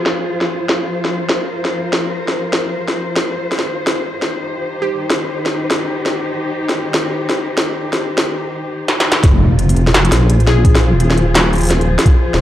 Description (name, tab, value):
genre	half-time drum and bass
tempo	170 BPM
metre	4/4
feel	swing 60% on 16ths, half-time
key	F minor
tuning	A4 = 440 Hz
part	dark symphonic cello section	sustained chords	0.0-12.4 s	Eb3 to C5	-20 LUFS	left 1 dB	sidechain pumping
part	industrial drum kit	drums	0.1-12.4 s	hi-hat, snare drum	-17 LUFS	equal	low-pass filter on snare, low-pass filter on hats, low-pass filter on room
part	glassy wavetable pluck	melody	4.8-5.1, 10.5-10.8 s	G4 to Ab4	-25 LUFS	left 1 dB	chorus, tape echo
part	deep soft wobble bass	bass	9.2-12.4 s	Eb1 to Bb1	-13 LUFS	equal	chorus
part	electronic kick drum	drums	9.2-12.1 s	none	-10 LUFS	equal	none
part	impact	sound effects	9.2-10.6 s	none	-20 LUFS	right 1 dB	none
room	light reverb, digital ambience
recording	dry, gritty hardware recording, cassette tape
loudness	-13 LUFS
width	side -12 dB against mid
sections	0.0-9.2 A section; 9.2-12.4 B section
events	drum fill 8.9-9.2; drop 9.2-12.4; impact 9.2-10.6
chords	0.0 Fm; 3.6 Eb6; 9.2 Fm